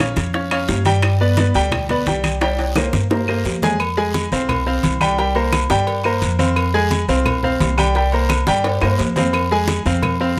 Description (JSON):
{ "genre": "latin, salsa", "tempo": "173 BPM", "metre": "4/4", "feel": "straight", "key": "F minor from 3.8 s", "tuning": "A4 = 439 Hz", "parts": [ { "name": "bright upright piano", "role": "accompaniment", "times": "0.0-10.4 s", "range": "G3 to Ab5", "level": "-22 LUFS", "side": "equal", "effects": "none" }, { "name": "upright bass", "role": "bass", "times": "0.0-10.4 s", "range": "Bb1 to G2", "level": "-23 LUFS", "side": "equal", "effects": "none" }, { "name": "claves", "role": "percussion", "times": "0.0-10.2 s", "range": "none", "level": "-29 LUFS", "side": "equal", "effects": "none" }, { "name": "timbales and agogo bells", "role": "percussion", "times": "0.0-10.2 s", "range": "none", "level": "-27 LUFS", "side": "equal", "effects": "none" }, { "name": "bongos and cowbell", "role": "percussion", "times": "0.2-10.2 s", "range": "none", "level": "-30 LUFS", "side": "equal", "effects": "none" }, { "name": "congas", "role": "percussion", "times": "0.2-10.4 s", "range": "none", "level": "-27 LUFS", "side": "equal", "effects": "none" }, { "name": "guiro", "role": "percussion", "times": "0.2-10.4 s", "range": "none", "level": "-34 LUFS", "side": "equal", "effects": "none" } ], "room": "moderate studio reverb, RT60 0.7 s", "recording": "none", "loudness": "-18 LUFS", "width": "mono", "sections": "0.0-3.8 A section; 3.8-10.4 B section", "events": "drum fill 2.4-3.8, 8.6-9.3", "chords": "0.0 Bbm (rootless); 1.0 G; 2.4 C7sus4; 3.8 Fm; 5.2 C5; 6.6 Fm; 8.0 C5; 9.3 Fm", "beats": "0.34 0.69 | 1.03 1.38 1.72 2.07 | 2.42 2.76 3.11 3.45 | 3.80 4.15 4.49 4.84 | 5.18 5.53 5.88 6.22 | 6.57 6.91 7.26 7.61 | 7.95 8.30 8.64 8.99 | 9.34 9.68 10.03 10.37" }